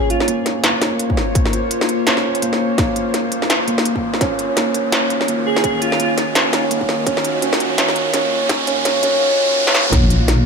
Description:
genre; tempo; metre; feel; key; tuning
half-time drum and bass; 168 BPM; 4/4; swing 58% on 16ths, half-time; Bb minor; A4 = 439 Hz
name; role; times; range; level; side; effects
airy dreamy lead; melody; 0.0-0.3, 5.5-6.1 s; F4 to Ab4; -22 LUFS; right 2 dB; chorus, ping-pong delay
bowed-like drone; sustained chords; 0.0-10.5 s; Eb3 to Db5; -23 LUFS; left 2 dB; built-in reverb, sidechain pumping
felt-muted upright piano; arpeggios; 0.0-10.1 s; Bb3 to F4; -20 LUFS; right 2 dB; low-pass filter, digital delay
riser and sub drop; sound effects; 1.6-10.5 s; none; -24 LUFS; right 2 dB; none
industrial drum kit; drums; 0.1-10.4 s; hi-hat, snare drum, toms; -19 LUFS; equal; high-pass filter on hats, high-pass filter on snare, high-pass filter on toms, high-pass filter on room
electronic kick drum; drums; 1.1-10.0 s; none; -20 LUFS; equal; distortion
deep soft wobble bass; bass; 9.9-10.5 s; Bb1; -16 LUFS; equal; chorus, tube saturation
room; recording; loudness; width
wet lush hall reverb, RT60 1.5 s; high-pass filter; -14 LUFS; side -5 dB against mid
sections
0.0-9.9 A section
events
build-up 0.0-9.9; filter sweep on synth drone 0.0-9.9; filter sweep on felt piano 0.0-9.9; filter sweep 0.0-9.9; riser 1.6-9.9; drum fill 9.7; impact 9.9-10.5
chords
0.0 Bbm; 4.2 Ebm; 9.9 Bbm7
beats
0.28 0.64 1.00 | 1.35 1.71 2.07 2.42 | 2.78 3.14 3.50 3.85 | 4.21 4.57 4.92 5.28 | 5.64 6.00 6.35 6.71 | 7.07 7.42 7.78 8.14 | 8.50 8.85 9.21 9.57 | 9.93 10.28

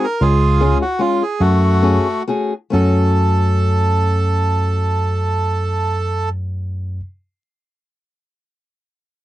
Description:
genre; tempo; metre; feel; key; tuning
musette waltz; 127-155 BPM; 3/4; swing 54% on 8ths; F# minor; A4 = 440 Hz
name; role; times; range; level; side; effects
bandoneon; melody; 0.0-6.3 s; A3 to A#4; -19 LUFS; right 2 dB; none
fingerpicked steel-string acoustic guitar; accompaniment; 0.0-7.0 s; G#3 to A4; -22 LUFS; left 4 dB; none
bell-like tine electric piano; bass; 0.2-7.0 s; C#2 to F#2; -16 LUFS; equal; none
room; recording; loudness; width
little or no reverb; dry, close 1970s-style studio recording; -15 LUFS; side -15 dB against mid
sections
0.0-2.7 A section; 2.7-5.5 B section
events
slowing down 0.2-2.7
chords
0.2 C#; 1.4 F#madd9; 2.7 F#m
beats
| 0.23 0.62 1.01 | 1.42 1.83 2.27 | 2.73 3.21 3.67 | 4.13 4.60 5.07

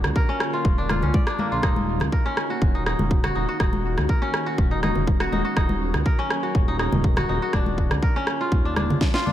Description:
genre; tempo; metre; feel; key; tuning
afro house; 122 BPM; 4/4; straight; unclear; A4 = 440 Hz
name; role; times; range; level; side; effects
ethereal airy pad; sustained chords; 0.0-9.3 s; D3 to Bb4; -31 LUFS; equal; ensemble chorus, built-in reverb, sidechain pumping
kora; arpeggios; 0.0-9.3 s; Bb3 to D5; -27 LUFS; equal; sidechain pumping, tape echo
smooth synth bass; bass; 0.0-9.0 s; Eb1 to Db2; -27 LUFS; equal; sidechain pumping
electronic rim click and snare drum; drums; 0.0-9.2 s; none; -29 LUFS; right 1 dB; none
congas; percussion; 0.0-9.3 s; none; -28 LUFS; left 1 dB; none
electronic kick drum; drums; 0.2-9.1 s; none; -21 LUFS; equal; none
room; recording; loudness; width
light reverb; none; -20 LUFS; side -12 dB against mid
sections
0.0-9.3 A section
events
drum fill 9.0-9.3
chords
0.0 Bb; 1.6 Ebm; 5.6 Gb/Eb; 7.5 Bb/Eb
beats
0.16 0.65 1.14 | 1.63 2.13 2.62 3.11 | 3.60 4.09 4.58 5.08 | 5.57 6.06 6.55 7.04 | 7.54 8.03 8.52 9.01

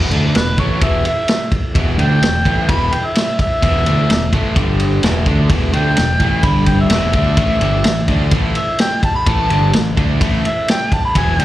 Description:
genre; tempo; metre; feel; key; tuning
blues rock power trio and southern rock; 128 BPM; 4/4; straight; unclear; A4 = 439 Hz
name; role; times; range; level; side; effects
crunchy overdriven guitar; riff; 0.0-11.4 s; E2 to D4; -19 LUFS; equal; slapback echo
growling fingered electric bass; bass; 0.0-11.4 s; E1 to D2; -17 LUFS; equal; overdrive
vintage drum kit; drums; 0.1-11.4 s; kick drum, ride cymbal, snare drum; -17 LUFS; equal; none
mellow harmonica; melody; 0.4-11.4 s; B4 to B5; -19 LUFS; equal; overdrive, slapback echo
room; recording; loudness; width
small room ambience; live gig heard through the venue's PA, club reverb; -13 LUFS; side -14 dB against mid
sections
0.0-11.4 A section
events
harmonica solo 0.0-11.4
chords
0.0 E5; 4.6 G5; 5.0 E5; 6.4 G5; 6.9 E5; 7.4 A5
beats
0.35 0.82 1.29 | 1.76 2.22 2.69 3.16 | 3.63 4.09 4.56 5.03 | 5.50 5.97 6.44 6.91 | 7.38 7.85 8.32 8.79 | 9.27 9.74 10.21 10.69 | 11.16

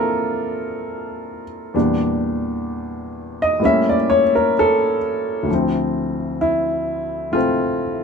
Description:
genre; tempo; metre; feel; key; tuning
solo jazz; 64 BPM; 4/4; swing 67% on 8ths; D minor; A4 = 440 Hz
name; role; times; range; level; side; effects
warm upright piano; solo; 0.0-8.0 s; D2 to E5; -18 LUFS; equal; none
room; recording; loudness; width
light reverb; minimal, uncompressed stereo recording; -17 LUFS; side -6 dB against mid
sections
0.0-5.5 A section; 5.5-8.0 B section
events
upright piano solo 0.0-5.5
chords
0.0 Bbadd9; 1.7 Em7b5; 3.6 A7b9; 5.5 Dm7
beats
0.81 | 1.75 2.68 3.61 4.55 | 5.48 6.41 7.34

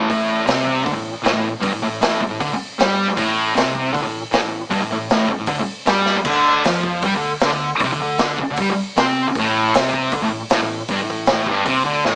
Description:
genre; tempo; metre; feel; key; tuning
garage rock duo or trio; 156 BPM; 4/4; straight; unclear; A4 = 440 Hz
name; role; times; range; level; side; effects
thick fuzz guitar; riff; 0.0-12.2 s; G2 to C4; -18 LUFS; equal; distortion
picked electric bass; bass; 0.1-12.2 s; G1 to C3; -32 LUFS; equal; none
vintage drum kit; drums; 0.1-12.1 s; crash cymbal, hi-hat, kick drum, snare drum; -21 LUFS; equal; none
room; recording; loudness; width
moderate small room reverb, RT60 0.5 s; small speaker sound; -16 LUFS; side -34 dB against mid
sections
0.1-12.2 A section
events
drum fill 6.1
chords
0.1 Gsus24; 6.3 Csus24; 9.4 Gsus24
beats
| 0.11 0.49 0.88 1.26 | 1.65 2.03 2.42 2.80 | 3.19 3.58 3.96 4.35 | 4.73 5.12 5.50 5.89 | 6.28 6.66 7.05 7.43 | 7.82 8.20 8.59 8.97 | 9.36 9.75 10.13 10.52 | 10.90 11.29 11.67 12.06

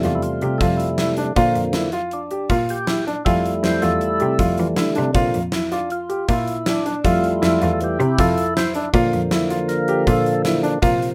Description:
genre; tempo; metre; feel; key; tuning
progressive instrumental, band music in an uneven meter; 159 BPM; 5/4; straight; Bb lydian; A4 = 440 Hz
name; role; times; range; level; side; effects
percussive tonewheel organ; accompaniment; 0.0-11.1 s; C3 to C5; -24 LUFS; equal; slow rotary speaker
clear concert grand piano; arpeggios; 0.0-11.1 s; D4 to G4; -25 LUFS; equal; none
rich cello; bass; 0.0-11.1 s; E2 to E3; -26 LUFS; equal; none
gated 80s drum kit; drums; 0.0-11.1 s; hi-hat, kick drum, snare drum; -27 LUFS; equal; none
room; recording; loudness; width
light reverb; rough home demo mix; -20 LUFS; mono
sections
0.0-11.1 A section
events
tonewheel organ solo 0.0-11.1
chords
0.0 Fmaj7; 1.4 Bb; 3.3 Fmaj7; 5.2 Bb; 7.0 Fmaj7; 8.9 Bb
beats
0.23 0.61 0.99 | 1.37 1.75 2.12 2.50 2.88 | 3.26 3.64 4.02 4.40 4.78 | 5.15 5.53 5.91 6.29 6.67 | 7.05 7.42 7.80 8.18 8.56 | 8.94 9.32 9.69 10.07 10.45 | 10.83

